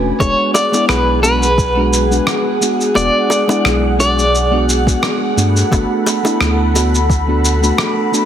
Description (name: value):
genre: sunset chillout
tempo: 87 BPM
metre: 4/4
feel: swing 54% on 16ths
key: unclear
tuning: A4 = 439 Hz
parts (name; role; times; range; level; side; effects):
- mellow FM electric piano; accompaniment; 0.0-8.3 s; G#3 to F#4; -18 LUFS; equal; chorus, auto-pan, cassette tape, digital delay
- airy breathy pad; sustained chords; 0.0-8.3 s; G#4 to B5; -20 LUFS; equal; chorus
- warm sub bass; bass; 0.0-7.7 s; E1 to G2; -17 LUFS; equal; none
- electric guitar at the edge of break-up; melody; 0.2-4.6 s; B4 to D5; -16 LUFS; equal; tremolo, digital delay
- electronic kick drum; drums; 0.2-7.2 s; none; -16 LUFS; equal; overdrive
- electronic shaker and rim click; drums; 0.2-8.3 s; none; -20 LUFS; equal; none
- bongos; percussion; 0.2-6.9 s; none; -21 LUFS; equal; none
room: light reverb, digital ambience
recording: heavily compressed radio sound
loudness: -12 LUFS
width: side -9 dB against mid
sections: 0.0-8.3 A section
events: none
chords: 0.2 E9; 5.4 Gmaj9